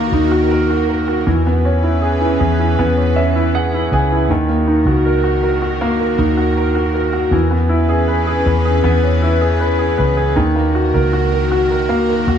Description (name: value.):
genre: pop ballad.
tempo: 79 BPM.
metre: 4/4.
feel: straight.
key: unclear.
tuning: A4 = 440 Hz.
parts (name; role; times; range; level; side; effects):
clear grand piano; accompaniment; 0.0-12.4 s; D#3 to G#5; -16 LUFS; right 1 dB; none.
airy breathy pad; sustained chords; 0.0-12.4 s; D#3 to B4; -21 LUFS; left 2 dB; chorus.
vintage muted fingered electric bass; bass; 0.0-12.4 s; C#2 to E2; -17 LUFS; equal; none.
room: light reverb, studio reverb.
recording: small room ambience.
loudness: -13 LUFS.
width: side -8 dB against mid.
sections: 0.0-12.4 A section.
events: grand piano fill 2.8-4.3.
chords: 0.0 D#m; 1.3 C#m7/E; 4.3 D#m; 7.3 C#m7/E; 10.4 D#m.